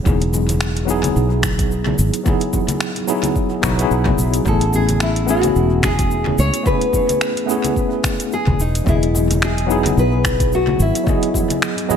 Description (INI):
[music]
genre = sunset chillout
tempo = 109 BPM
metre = 4/4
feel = swing 57% on 16ths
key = E major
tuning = A4 = 440 Hz
[part]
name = tine electric piano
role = accompaniment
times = 0.0-12.0 s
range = F#3 to D#5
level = -20 LUFS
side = moving between left 4 dB and right 5 dB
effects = medium stereo tremolo, auto-pan, low-pass filter, tape echo
[part]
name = fingered electric bass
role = bass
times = 0.1-10.9 s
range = E1 to C#2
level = -19 LUFS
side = equal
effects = tube saturation
[part]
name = deep house drum kit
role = drums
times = 0.1-12.0 s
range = cabasa, finger snaps, hi-hat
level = -24 LUFS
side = equal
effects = tape echo
[part]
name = electronic kick drum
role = drums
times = 0.1-11.5 s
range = none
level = -21 LUFS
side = equal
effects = none
[part]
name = congas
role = percussion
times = 0.1-12.0 s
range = none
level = -26 LUFS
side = left 4 dB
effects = tape echo
[part]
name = nylon-string guitar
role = melody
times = 4.5-12.0 s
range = D#4 to C#5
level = -21 LUFS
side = left 2 dB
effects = dub echo
[sound]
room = moderate echo chamber reverb, RT60 1.2 s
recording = echo-heavy mix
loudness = -15 LUFS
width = side -8 dB against mid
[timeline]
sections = 0.0-12.0 A section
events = none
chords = 0.0 Emaj9; 4.5 Amaj9; 8.6 Emaj9